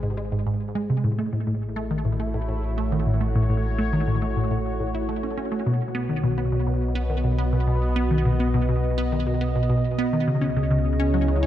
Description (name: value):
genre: ambient, sequencer-driven space music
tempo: 104 BPM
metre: 4/4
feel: straight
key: unclear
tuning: A4 = 440 Hz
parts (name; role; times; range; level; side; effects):
- sweeping resonant pad; sustained chords; 0.0-11.5 s; B2 to Eb5; -28 LUFS; right 1 dB; chorus
- resonant blip pluck; riff; 0.0-11.5 s; G#2 to E4; -24 LUFS; equal; phaser, tape echo
- round analog bass; bass; 0.0-11.5 s; G#1 to C#2; -26 LUFS; equal; none
room: light reverb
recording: none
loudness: -21 LUFS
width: side -12 dB against mid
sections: 0.0-11.5 A section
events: fade-in on analog synth pad 0.0-11.5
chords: 0.0 G#; 1.0 A6; 5.7 B; 10.3 C#madd9